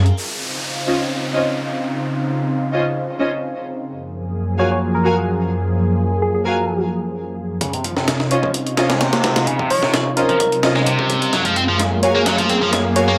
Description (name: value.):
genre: breakbeat, breaks.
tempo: 129 BPM.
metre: 4/4.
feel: straight.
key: Db major.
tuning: A4 = 440 Hz.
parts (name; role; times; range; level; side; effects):
lush unison pad; sustained chords; 0.0-13.2 s; Gb2 to Bb4; -23 LUFS; equal; chorus, phaser, vintage 12-bit sampler grit, sidechain pumping.
breakbeat sampler-style drum kit; drums; 0.1-0.2, 7.6-13.1 s; hi-hat, kick drum, snare drum; -24 LUFS; equal; high-pass filter on hats, high-pass filter on kick, high-pass filter on snare, high-pass filter on room.
downlifter and riser; sound effects; 0.2-3.9, 9.7-13.2 s; none; -31 LUFS; equal; none.
bright studio string section; stabs; 0.9-13.0 s; Db4 to Ab5; -24 LUFS; equal; low-pass filter, digital delay.
soft struck synth lead; melody; 4.6-13.2 s; Ab4 to Db5; -24 LUFS; equal; chorus, phaser, telephone sound, vintage 12-bit sampler grit, digital delay.
heavy high-gain guitar; riff; 7.6-13.1 s; C3 to C4; -23 LUFS; equal; distortion, vintage 12-bit sampler grit, low-pass filter, digital delay.
room: moderate plate reverb, RT60 1.4 s, digital ambience.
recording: none.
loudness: -19 LUFS.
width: mono.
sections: 0.2-7.6 A section; 7.6-13.2 B section.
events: break 0.0; build-up 7.6-13.2; filter sweep on distorted electric guitar 7.6-13.2; filter sweep on string section 7.6-13.2; drum fill 11.3-13.2.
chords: 0.2 Dbmaj9; 3.9 Gbmaj9; 7.6 Dbmaj9; 11.3 Gbmaj9.